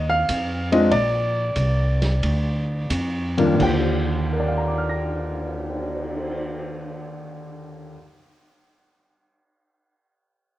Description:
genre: jazz piano trio.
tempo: 84-97 BPM.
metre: 4/4.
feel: swing 69% on 8ths.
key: Eb major.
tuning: A4 = 439 Hz.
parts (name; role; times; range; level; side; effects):
warm upright piano; melody; 0.0-8.2 s; Eb2 to Bb6; -23 LUFS; left 1 dB; plate reverb.
upright bass; bass; 0.0-7.9 s; Bb1 to F2; -24 LUFS; equal; none.
vintage drum kit; drums; 0.3-6.3 s; crash cymbal, cymbal swell, hi-hat, kick drum, ride cymbal, snare drum; -31 LUFS; right 1 dB; none.
room: moderate studio reverb, RT60 0.5 s.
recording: worn, warbling old tape, cassette tape, warbly pitch drift.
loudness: -20 LUFS.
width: side -14 dB against mid.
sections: 0.0-3.6 A section; 3.6-6.5 B section.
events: slowing down 0.0-3.6.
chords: 0.0 F7(no3); 0.9 Bb; 3.6 Ebmaj9.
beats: 0.29 | 0.92 1.56 2.22 2.90 | 3.60 4.31 5.03 5.74.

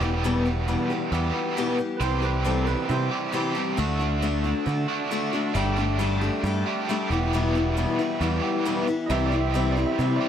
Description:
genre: rock.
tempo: 135 BPM.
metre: 4/4.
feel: straight.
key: unclear.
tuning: A4 = 436 Hz.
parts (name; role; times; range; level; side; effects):
picked steel-string acoustic guitar; accompaniment; 0.0-10.3 s; E2 to G4; -26 LUFS; left 4 dB; none.
overdriven electric guitar; riff; 0.0-10.3 s; E2 to G4; -28 LUFS; right 4 dB; harmonic tremolo.
picked electric bass; bass; 0.0-10.2 s; E1 to D3; -26 LUFS; equal; none.
bright upright piano; second line; 2.0-3.1, 9.1-10.3 s; E4 to E5; -31 LUFS; right 9 dB; none.
room: light reverb, small room ambience.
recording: none.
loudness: -22 LUFS.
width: side -9 dB against mid.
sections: 0.0-10.3 A section.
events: none.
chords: 0.0 Em; 2.0 C; 3.8 D; 5.6 Gsus2; 7.1 Em; 9.1 C.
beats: | 0.23 0.68 1.12 1.56 | 2.01 2.45 2.89 3.34 | 3.78 4.22 4.67 5.11 | 5.55 6.00 6.44 6.88 | 7.33 7.77 8.21 8.66 | 9.10 9.54 9.98.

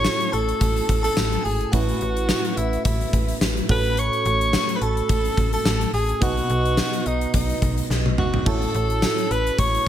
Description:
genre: 1980s-style pop.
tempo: 107 BPM.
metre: 4/4.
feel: swing 55% on 16ths.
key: unclear.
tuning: A4 = 439 Hz.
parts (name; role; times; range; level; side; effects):
bright alto saxophone; melody; 0.0-9.9 s; D#4 to C#5; -25 LUFS; equal; tape echo.
shimmering bell with halo; second line; 0.0-9.9 s; D#5 to C#6; -33 LUFS; left 1 dB; ensemble chorus, tape echo.
FM electric piano; accompaniment; 0.0-9.9 s; A2 to D#5; -27 LUFS; right 4 dB; chorus.
slap-like FM bass; bass; 0.0-9.8 s; G#1 to B1; -25 LUFS; equal; none.
gated 80s drum kit; drums; 0.0-9.9 s; crash cymbal, hi-hat, kick drum, snare drum, tambourine, toms; -23 LUFS; left 1 dB; gated reverb.
room: light reverb, small room ambience.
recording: none.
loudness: -19 LUFS.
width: side -10 dB against mid.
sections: 0.0-9.9 A section.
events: drum fill 7.9-8.5.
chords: 0.0 A6; 3.7 F#m/A; 6.2 B; 8.5 A6.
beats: 0.05 0.61 1.17 | 1.73 2.29 2.85 3.42 | 3.98 4.54 5.10 5.66 | 6.22 6.78 7.34 7.90 | 8.46 9.02 9.58.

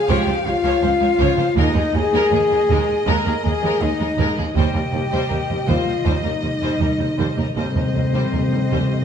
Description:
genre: cinematic, epic orchestral film score.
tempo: 80 BPM.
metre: 4/4.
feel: straight.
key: C phrygian.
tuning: A4 = 439 Hz.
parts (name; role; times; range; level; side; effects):
rich symphonic violin section; melody; 0.0-9.0 s; Eb5 to F5; -30 LUFS; left 5 dB; none.
mellow hollow silver concert flute; second line; 0.0-9.0 s; C5 to Bb5; -28 LUFS; left 4 dB; none.
dark French horn section; sustained chords; 0.0-9.0 s; C4 to Bb4; -21 LUFS; left 3 dB; none.
rich symphonic violin section; second line; 0.1-8.9 s; Ab4 to Db5; -28 LUFS; left 3 dB; none.
clear symphonic viola section; accompaniment; 0.1-8.9 s; F3 to Ab3; -30 LUFS; right 2 dB; none.
rich studio double bass section; bass; 0.1-8.8 s; Db2 to Eb2; -24 LUFS; right 4 dB; none.
warm symphonic cello section; bass; 0.1-8.8 s; Db2 to Eb2; -24 LUFS; right 3 dB; none.
timpani; percussion; 4.6-9.0 s; C3; -24 LUFS; equal; none.
room: wet recital hall reverb, RT60 1.5 s.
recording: dark, warm production, nothing above 10.5 kHz.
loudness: -17 LUFS.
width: side -8 dB against mid.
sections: 0.0-9.0 A section.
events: timpani fill 4.6-9.0.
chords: 0.0 Db; 1.6 Ebsus4; 4.6 Cm/Eb.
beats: 0.09 0.83 | 1.58 2.33 3.08 3.82 | 4.56 5.30 6.05 6.80 | 7.56 8.33.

